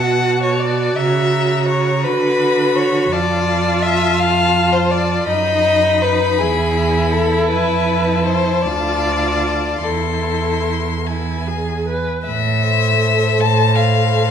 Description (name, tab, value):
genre	classical, slow romantic movement for string quartet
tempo	48-57 BPM (dotted quarters)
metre	6/8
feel	rubato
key	A minor from 3.1 s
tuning	A4 = 440 Hz
part	rich violin	melody	0.0-14.3 s	E5 to C6	-22 LUFS	left 9 dB	none
part	rich violin	second line	0.0-14.3 s	G#4 to F#5	-18 LUFS	left 4 dB	none
part	rich viola	accompaniment	0.0-14.3 s	D#4 to B4	-21 LUFS	right 2 dB	none
part	clear cello	bass	0.0-14.3 s	D2 to D3	-19 LUFS	right 4 dB	none
room	wet recital hall reverb, RT60 1.4 s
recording	minimal, uncompressed stereo recording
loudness	-14 LUFS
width	side -8 dB against mid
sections	0.0-12.3 A section; 12.3-14.3 B section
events	none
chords	0.0 Bm7; 1.0 F#7/C#; 2.0 Bm/D; 3.1 Dm/F; 5.3 B/F#; 6.4 E; 7.5 F; 8.7 Dm; 9.9 Am/E; 11.1 E; 12.3 Am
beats	| 0.98 2.04 | 3.13 4.21 | 5.29 6.40 | 7.52 8.65 | 9.85 11.08 | 12.27 13.41